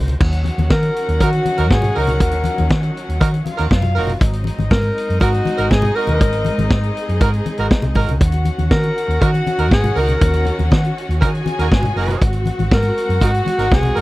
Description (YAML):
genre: disco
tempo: 120 BPM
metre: 4/4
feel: straight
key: Eb dorian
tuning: A4 = 438 Hz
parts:
  - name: clear symphonic string section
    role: sustained chords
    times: 0.0-14.0 s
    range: Eb3 to C5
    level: -28 LUFS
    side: equal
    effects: none
  - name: hollow-body short-scale fingered electric bass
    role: bass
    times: 0.0-14.0 s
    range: Gb1 to Eb3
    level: -18 LUFS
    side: equal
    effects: none
  - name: vintage drum kit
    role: drums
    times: 0.1-14.0 s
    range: crash cymbal, hi-hat, kick drum, snare drum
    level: -17 LUFS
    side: equal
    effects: none
  - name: congas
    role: percussion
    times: 0.1-13.9 s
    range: none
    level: -25 LUFS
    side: left 3 dB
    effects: none
  - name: dark chamber string section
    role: second line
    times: 0.2-14.0 s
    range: Eb4 to Ab5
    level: -26 LUFS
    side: left 3 dB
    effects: none
  - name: breathy alto saxophone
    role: melody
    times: 0.7-14.0 s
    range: Gb4 to Bb4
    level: -21 LUFS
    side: equal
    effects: tape echo
  - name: mellow horn section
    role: stabs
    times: 1.2-14.0 s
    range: Eb4 to Bb4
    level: -22 LUFS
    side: right 5 dB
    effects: none
room: little or no reverb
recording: dry, close 1970s-style studio recording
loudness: -14 LUFS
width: side -18 dB against mid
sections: 0.2-14.0 A section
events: none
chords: 0.2 Ebm7; 4.2 Ab9; 8.2 Ebm7; 12.2 Ab9